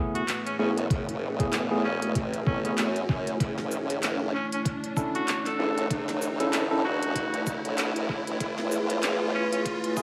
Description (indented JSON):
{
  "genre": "glitch hop",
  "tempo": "96 BPM",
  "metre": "4/4",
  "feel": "swing 58% on 16ths",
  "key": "F# minor",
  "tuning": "A4 = 440 Hz",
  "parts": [
    { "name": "warm analog pad", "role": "sustained chords", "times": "0.2-10.0 s", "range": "A3 to C#5", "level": "-36 LUFS", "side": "equal", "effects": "chorus, vintage 12-bit sampler grit, sidechain pumping" },
    { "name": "bright tine electric piano", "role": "stabs", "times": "0.0-10.0 s", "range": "A3 to A4", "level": "-34 LUFS", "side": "equal", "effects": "sidechain pumping, low-pass filter, dub echo" },
    { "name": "riser", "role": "sound effects", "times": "0.1-10.0 s", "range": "none", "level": "-38 LUFS", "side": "equal", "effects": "none" },
    { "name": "bright tenor saxophone", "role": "melody", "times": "0.1-9.6 s", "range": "C#4 to A4", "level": "-37 LUFS", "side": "equal", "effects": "vintage 12-bit sampler grit, dub echo" },
    { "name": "glitchy drum kit", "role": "drums", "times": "0.2-10.0 s", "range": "handclaps, hi-hat, shaker, snare drum", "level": "-37 LUFS", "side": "equal", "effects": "dub echo" },
    { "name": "formant-sweep wobble bass", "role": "bass", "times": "0.6-9.3 s", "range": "E1 to F#2", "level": "-33 LUFS", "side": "equal", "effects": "chorus, high-pass filter" },
    { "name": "electronic kick drum", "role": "drums", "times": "0.9-10.0 s", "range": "none", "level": "-33 LUFS", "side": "equal", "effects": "none" }
  ],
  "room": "moderate plate reverb, RT60 2.7 s",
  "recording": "echo-heavy mix, vinyl crackle, high-pass filter",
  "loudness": "-28 LUFS",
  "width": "mono",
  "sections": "0.0-10.0 A section",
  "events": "build-up 0.0-10.0; filter sweep on tine electric piano 0.0-10.0; filter sweep on analog synth pad 0.0-10.0; riser 0.1-10.0",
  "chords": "0.0 F#m11; 3.4 Bm11/F# (rootless); 8.4 F#m11"
}